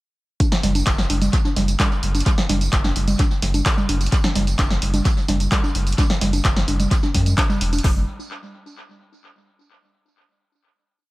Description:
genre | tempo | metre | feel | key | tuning
acid house | 129 BPM | 4/4 | straight | unclear | A4 = 440 Hz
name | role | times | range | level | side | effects
punchy analog drum machine | drums | 0.4-8.0 s | hi-hat, kick drum | -20 LUFS | equal | overdrive
punchy analog drum machine | drums | 0.4-7.9 s | congas, handclaps, hi-hat, snare drum, tambourine | -21 LUFS | equal | tape echo
saturated sub bass | bass | 0.6-8.1 s | E1 to F#2 | -21 LUFS | equal | sidechain pumping
room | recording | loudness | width
light reverb | echo-heavy mix | -17 LUFS | side -19 dB against mid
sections
0.4-7.8 drop; 7.8-9.7 final note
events
drop 0.4-7.8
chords
none

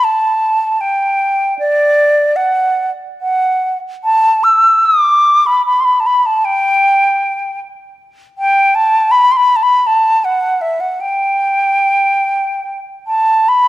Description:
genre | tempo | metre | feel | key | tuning
celtic folk | 69-81 BPM | 3/4 | rubato | G major | A4 = 441 Hz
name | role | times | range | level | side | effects
wooden flute | solo | 0.0-13.7 s | D5 to E6 | -11 LUFS | equal | none
room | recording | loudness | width
light reverb | none | -10 LUFS | side -16 dB against mid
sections
0.0-13.5 A section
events
none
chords
none

